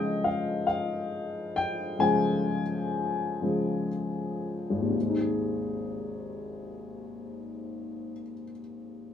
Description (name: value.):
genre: pop.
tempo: 38-46 BPM (dotted quarters).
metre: 6/8.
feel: straight.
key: Ab major.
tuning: A4 = 443 Hz.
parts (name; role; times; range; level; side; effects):
warm upright piano; accompaniment; 0.0-9.1 s; Ab1 to Ab5; -28 LUFS; left 2 dB; none.
room: wet studio ambience, RT60 0.5 s.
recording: band playing live in one room.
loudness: -27 LUFS.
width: side -9 dB against mid.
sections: 0.0-5.0 A section; 5.0-8.2 B section.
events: slowing down 0.0-5.0; upright piano solo 0.0-5.0.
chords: 0.0 Db; 5.0 Ab.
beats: 0.66 | 2.00 3.42 | 4.95 6.55.